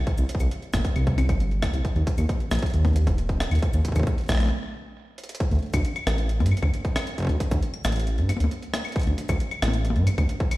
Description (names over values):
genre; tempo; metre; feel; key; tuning
IDM; 135 BPM; 4/4; straight; unclear; A4 = 440 Hz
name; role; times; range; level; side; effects
dark detuned saw bass; bass; 0.0-10.2 s; Eb1 to G2; -22 LUFS; equal; none
electronic kick drum; drums; 0.1-10.5 s; none; -26 LUFS; equal; distortion, overdrive
jungle sampler-style drum kit; drums; 0.1-10.6 s; cabasa, claves, hi-hat, rim click, toms; -30 LUFS; left 1 dB; ping-pong delay
room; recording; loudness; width
little or no reverb; played on a big sound system in a bare room, stone room reverb; -22 LUFS; side -18 dB against mid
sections
0.0-5.4 A section; 5.4-10.6 B section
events
stop 4.5-5.4; drum fill 5.2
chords
none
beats
| 0.07 0.51 0.96 1.40 | 1.85 2.29 2.74 3.18 | 3.62 4.07 4.51 4.96 | 5.40 5.85 6.29 6.74 | 7.18 7.62 8.07 8.51 | 8.96 9.40 9.85 10.29